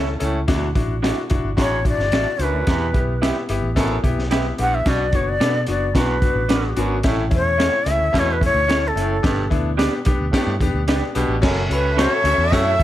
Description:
uptempo 1960s-style soul; 110 BPM; 4/4; straight; A mixolydian; A4 = 442 Hz
breathy shakuhachi; melody; 0.0-12.8 s; A4 to F#5; -21 LUFS; left 1 dB
clear concert grand piano; accompaniment; 0.0-12.8 s; A3 to D5; -25 LUFS; left 5 dB
electric guitar through a small old amp; stabs; 0.0-12.1 s; C#4 to E5; -28 LUFS; right 8 dB
vintage muted fingered electric bass; bass; 0.0-12.8 s; F#1 to B2; -23 LUFS; equal
breathy baritone saxophone; riff; 0.2-12.7 s; D2 to B2; -28 LUFS; right 6 dB
crunchy breakbeat drum kit; drums; 0.2-12.8 s; crash cymbal, hi-hat, kick drum, snare drum; -22 LUFS; equal
rich studio violin section; second line; 11.4-12.8 s; C#4 to E5; -27 LUFS; right 1 dB
glockenspiel with hard plastic mallets; second line; 11.7-12.8 s; B5 to E6; -29 LUFS; right 1 dB
light reverb; -17 LUFS; side -13 dB against mid
0.0-11.4 A section; 11.4-12.8 B section
shakuhachi solo 0.0-11.4; grand piano fill 10.6-11.4
0.5 Dadd9; 2.7 Em; 4.9 Bm; 7.0 A; 9.2 G; 11.4 F#m
| 0.47 1.02 1.57 2.12 | 2.67 3.21 3.76 4.31 | 4.86 5.40 5.95 6.50 | 7.05 7.59 8.14 8.69 | 9.24 9.79 10.33 10.88 | 11.43 11.98 12.52

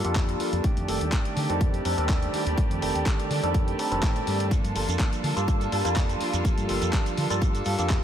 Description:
filtered disco house; 124 BPM; 4/4; swing 53% on 16ths; G minor; A4 = 440 Hz
barky tine electric piano; accompaniment; 0.0-8.0 s; Eb3 to A4; -29 LUFS; equal; overdrive, phaser, sidechain pumping, low-pass filter
rich studio violin section; sustained chords; 0.0-8.0 s; Bb3 to A5; -34 LUFS; right 2 dB; sidechain pumping, low-pass filter
clean electric guitar; riff; 0.0-8.0 s; Eb3 to A4; -34 LUFS; right 2 dB; sidechain pumping, low-pass filter
fingered electric bass; bass; 0.0-8.0 s; F1 to D3; -29 LUFS; equal; sidechain pumping, low-pass filter
dusty soul sampler-style drum kit; drums; 0.0-8.0 s; handclaps, hi-hat, rim click, shaker; -34 LUFS; left 1 dB; sidechain pumping on hats, sidechain pumping on perc
tube shaker; percussion; 0.0-8.0 s; barely audible
electronic kick drum; drums; 0.2-8.0 s; -24 LUFS; equal
light reverb, digital ambience; -23 LUFS; side -10 dB against mid
0.0-8.0 A section
filter sweep 0.0-8.0
0.0 Gm9; 0.6 F13; 4.5 Gm9
0.16 | 0.64 1.13 1.61 2.09 | 2.58 3.06 3.55 4.03 | 4.51 5.00 5.48 5.96 | 6.45 6.93 7.42 7.90

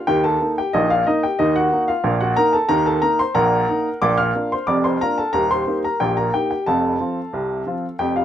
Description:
ragtime piano; 91 BPM; 2/4; straight; A4 = 440 Hz
warm upright piano; solo; 0.0-8.2 s; Eb1 to F6; -17 LUFS; equal
moderate studio reverb, RT60 0.6 s; rough home demo mix; -17 LUFS; side -10 dB against mid
0.0-8.2 A section
0.1 Eb; 1.4 Ebm; 4.0 Bb; 5.3 Eb; 6.7 F
| 0.08 0.74 | 1.39 2.05 | 2.71 3.37 | 4.02 4.68 | 5.34 6.00 | 6.66 7.32 | 7.98

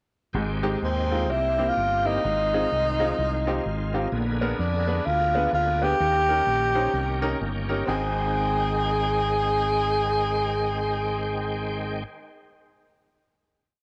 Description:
uptempo gospel; 127 BPM; 4/4; swing 61% on 8ths; Ab major; A4 = 440 Hz
bright baby grand piano; accompaniment; 0.3-12.0 s; Ab1 to G5; -33 LUFS; equal
bright tonewheel organ; sustained chords; 0.3-12.0 s; D3 to G5; -36 LUFS; equal; slow rotary speaker, overdrive, chorus vibrato
fingered electric bass; bass; 0.3-12.0 s; G1 to F2; -31 LUFS; equal
warm tenor saxophone; melody; 0.8-12.0 s; C4 to Ab4; -26 LUFS; equal
moderate spring reverb, RT60 2.3 s; -25 LUFS; mono
0.3-7.9 breakdown; 7.9-11.7 final chord
0.3 Abmaj7; 1.3 C7; 2.2 Fm7/Ab; 4.1 Bb7b9; 6.0 Eb7; 7.9 Abmaj7
| 0.35 0.82 1.30 1.77 | 2.24 2.71 3.18 3.65 | 4.12 4.59 5.06 5.53 | 6.00 6.47 6.94 7.41 | 7.88 8.36 8.83 9.30 | 9.78 10.26 10.73 11.21

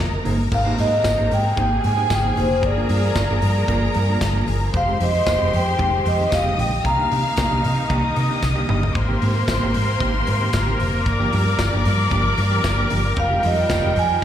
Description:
disco; 114 BPM; 4/4; straight; A4 = 440 Hz
clear studio string section; second line; 0.0-14.2 s; G3 to F6; -26 LUFS; left 2 dB; slapback echo
mellow electric guitar; accompaniment; 0.0-14.2 s; Eb3 to C5; -28 LUFS; right 4 dB
clear studio string section; sustained chords; 0.0-14.2 s; C3 to Bb4; -26 LUFS; left 1 dB
fingered electric bass; bass; 0.0-14.2 s; F1 to C3; -21 LUFS; equal
congas; percussion; 0.0-14.2 s; -32 LUFS; left 3 dB
modern studio drum kit; drums; 0.3-14.2 s; crash cymbal, hi-hat, kick drum, snare drum, toms; -27 LUFS; equal
vibraphone with soft mallets; melody; 0.5-8.4, 13.2-14.2 s; C5 to Bb5; -22 LUFS; equal; slapback echo
tambourine; percussion; 1.0-13.8 s; -38 LUFS; left 3 dB
light reverb, studio ambience; live gig heard through the venue's PA, recital hall reverb; -17 LUFS; side -10 dB against mid
0.5-14.2 A section
drum fill 8.4-9.0
0.0 Bb9sus4; 2.6 Gm7; 4.7 Fm9; 6.8 Cm9; 9.0 Abmaj9; 11.1 Gm7; 13.2 Fm9
| 0.52 1.05 1.57 2.10 | 2.63 3.15 3.68 4.21 | 4.74 5.26 5.79 6.32 | 6.85 7.37 7.90 8.43 | 8.96 9.48 10.01 10.54 | 11.06 11.59 12.12 12.65 | 13.17 13.70 14.23

